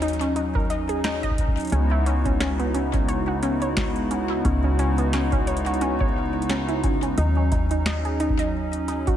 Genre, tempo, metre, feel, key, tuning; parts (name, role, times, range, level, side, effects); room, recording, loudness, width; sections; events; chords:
IDM; 88 BPM; 4/4; swing 56% on 16ths; C# minor; A4 = 437 Hz
hollow soft pad; sustained chords; 0.0-9.2 s; C#3 to F#4; -26 LUFS; equal; chorus
warbly dusty pluck; arpeggios; 0.0-9.2 s; B3 to D#5; -27 LUFS; right 1 dB; chorus, ping-pong delay
woody FM bass; bass; 0.0-9.2 s; C#2 to D#2; -26 LUFS; equal
booming analog drum machine; drums; 0.0-9.2 s; hi-hat, snare drum; -32 LUFS; equal; ping-pong delay
electronic kick drum; drums; 0.5-9.2 s; -26 LUFS; equal
moderate plate reverb, RT60 2.6 s; dreamy mix soaked in reverb; -21 LUFS; side -10 dB against mid
0.0-9.2 A section
0.0 D#m7; 1.7 C#m11; 7.2 D#m7